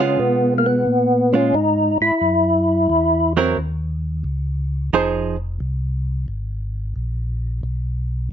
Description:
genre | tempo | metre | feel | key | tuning
soul jazz organ trio | 89 BPM | 4/4 | swing 69% on 8ths | unclear | A4 = 440 Hz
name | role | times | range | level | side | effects
percussive tonewheel organ | melody | 0.0-3.3 s | Bb3 to Fb4 | -16 LUFS | left 1 dB | slow rotary speaker, chorus vibrato
archtop guitar, miked and amplified | accompaniment | 0.0-5.4 s | F3 to C5 | -19 LUFS | right 6 dB | none
mellow tonewheel organ | bass | 0.0-8.3 s | F1 to Db3 | -22 LUFS | equal | chorus vibrato, slow rotary speaker
room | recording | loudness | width
light reverb | nothing above 7.5 kHz | -17 LUFS | side -9 dB against mid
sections
0.0-8.3 A section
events
none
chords
0.0 Db7; 2.2 Gb7(no3); 4.9 Fm7; 7.6 N.C.

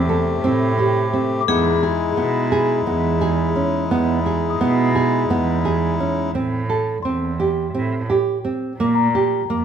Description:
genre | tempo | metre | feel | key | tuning
contemporary instrumental, chamber music in an uneven meter | 172 BPM (eighths) | 7/8 | straight | unclear | A4 = 441 Hz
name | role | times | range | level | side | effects
vibraphone with hard mallets | second line | 0.0-6.0 s | G#4 to A4 | -26 LUFS | left 7 dB | none
hand-pumped harmonium | sustained chords | 0.0-6.3 s | C3 to G4 | -23 LUFS | left 5 dB | none
warm cello | bass | 0.0-9.6 s | E2 to B2 | -22 LUFS | right 4 dB | none
nylon-string guitar | arpeggios | 0.1-9.6 s | Bb3 to A4 | -21 LUFS | right 3 dB | none
celesta | texture | 1.4-9.6 s | Bb5 to D#6 | -26 LUFS | left 12 dB | none
room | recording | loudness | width
light reverb | close, detailed microphones | -17 LUFS | side -8 dB against mid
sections
0.0-6.3 A section; 6.3-9.6 B section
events
none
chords
0.0 Am7; 1.5 Emaj7; 6.3 Am7; 8.8 Bb5

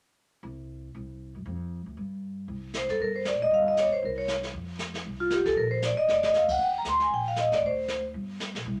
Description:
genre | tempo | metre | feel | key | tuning
jazz, small-group swing and bop | 234 BPM | 4/4 | swing 58% on 8ths | C minor | A4 = 440 Hz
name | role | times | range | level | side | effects
upright bass | bass | 0.4-8.8 s | F1 to A2 | -39 LUFS | equal | none
jazz brush drum kit | drums | 2.5-8.8 s | brushed snare drum, crash cymbal, hi-hat, kick drum, snare drum | -39 LUFS | equal | none
vibraphone with medium hard mallets | melody | 2.8-8.0 s | F4 to C6 | -26 LUFS | equal | none
room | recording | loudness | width
wet studio reverb, RT60 0.6 s | none | -28 LUFS | mono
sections
0.4-2.5 A section; 2.5-8.8 B section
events
drum fill 6.1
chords
0.4 N.C.; 1.5 Dm; 2.0 N.C.; 2.5 C5; 3.5 Eb9/G (rootless); 4.0 Bbsus2/C; 4.5 F5; 5.6 Bb5; 6.6 Eb5; 7.6 Csus2/D; 8.1 Gm

